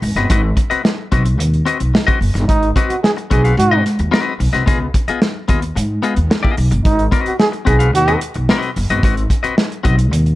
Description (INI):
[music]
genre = funk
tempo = 110 BPM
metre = 4/4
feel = straight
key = unclear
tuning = A4 = 445 Hz
[part]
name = clean electric guitar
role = accompaniment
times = 0.0-10.2 s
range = Cb4 to F5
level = -20 LUFS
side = left 5 dB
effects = plate reverb
[part]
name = upright bass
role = bass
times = 0.0-10.3 s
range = Gb1 to Ab2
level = -16 LUFS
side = equal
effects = none
[part]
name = warm soul drum kit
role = drums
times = 0.0-10.4 s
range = hi-hat, kick drum, snare drum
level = -17 LUFS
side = equal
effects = none
[part]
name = breathy trombone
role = second line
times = 2.5-8.2 s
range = Eb4 to Ab4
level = -18 LUFS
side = right 2 dB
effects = plate reverb
[sound]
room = light reverb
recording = dark, warm production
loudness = -13 LUFS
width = side -17 dB against mid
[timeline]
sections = 0.0-10.4 A section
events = none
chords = 0.0 Ab7#9; 4.7 Db9 (rootless); 6.9 Ab7#9 (rootless)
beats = | 0.30 0.85 1.39 1.94 | 2.49 3.03 3.58 4.13 | 4.67 5.22 5.76 6.31 | 6.86 7.40 7.95 8.49 | 9.03 9.58 10.12